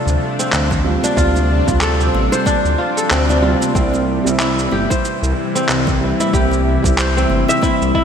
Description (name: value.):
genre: organic downtempo.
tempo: 93 BPM.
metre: 4/4.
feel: swing 57% on 16ths.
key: D minor.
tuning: A4 = 440 Hz.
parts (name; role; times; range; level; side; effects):
felt-muted upright piano; accompaniment; 0.0-8.0 s; G3 to F4; -22 LUFS; right 3 dB; sidechain pumping, ping-pong delay.
bowed-like drone; sustained chords; 0.0-8.0 s; C3 to E4; -22 LUFS; left 1 dB; built-in reverb, sidechain pumping.
kora; arpeggios; 0.0-8.0 s; C4 to E5; -19 LUFS; left 1 dB; vintage 12-bit sampler grit, ping-pong delay.
smooth synth bass; bass; 0.1-7.9 s; G1 to D2; -18 LUFS; equal; none.
electronic cabasa and handclaps; drums; 0.1-7.9 s; none; -23 LUFS; right 1 dB; gated reverb.
electronic kick drum; drums; 0.7-8.0 s; none; -20 LUFS; equal; overdrive.
congas and bongos; percussion; 0.7-7.8 s; none; -30 LUFS; right 2 dB; none.
room: moderate lush hall reverb, RT60 2.8 s.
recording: bright 1980s-style digital production.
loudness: -13 LUFS.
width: side -7 dB against mid.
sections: 0.0-8.0 A section.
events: none.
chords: 0.0 Dm7; 3.8 C.